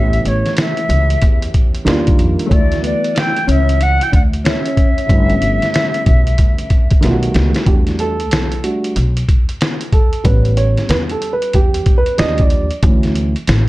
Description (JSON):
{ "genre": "hip hop, jazz-hop", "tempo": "93 BPM", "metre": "4/4", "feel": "swing 63% on 16ths", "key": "E dorian", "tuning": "A4 = 437 Hz", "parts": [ { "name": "concert flute", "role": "melody", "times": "0.0-7.0 s", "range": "C#5 to G5", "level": "-19 LUFS", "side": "left 1 dB", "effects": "slapback echo" }, { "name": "dark baby grand piano", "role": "accompaniment", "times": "0.0-13.3 s", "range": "D3 to D#5", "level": "-20 LUFS", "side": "right 2 dB", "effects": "none" }, { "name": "upright bass", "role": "bass", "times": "0.0-13.7 s", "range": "G1 to E#2", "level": "-16 LUFS", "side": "equal", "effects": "none" }, { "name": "trip hop sampler-style drum kit", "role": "drums", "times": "0.1-13.7 s", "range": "hi-hat, kick drum, snare drum", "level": "-14 LUFS", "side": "equal", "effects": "none" }, { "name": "mellow electric guitar", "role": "second line", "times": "2.5-7.0 s", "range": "A3 to E4", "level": "-23 LUFS", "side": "left 3 dB", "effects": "ensemble chorus, slapback echo" } ], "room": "light reverb", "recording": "dark, warm production", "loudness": "-12 LUFS", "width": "side -18 dB against mid", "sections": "0.0-7.7 A section; 7.7-13.7 B section", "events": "drum fill 7.0-7.7; grand piano solo 7.7-13.7", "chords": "0.0 A9; 1.9 D#maj9; 2.5 Dmaj9; 5.1 G69; 7.0 B7b13; 7.7 Em11; 10.3 A9; 12.2 D#maj9; 12.8 Dmaj9" }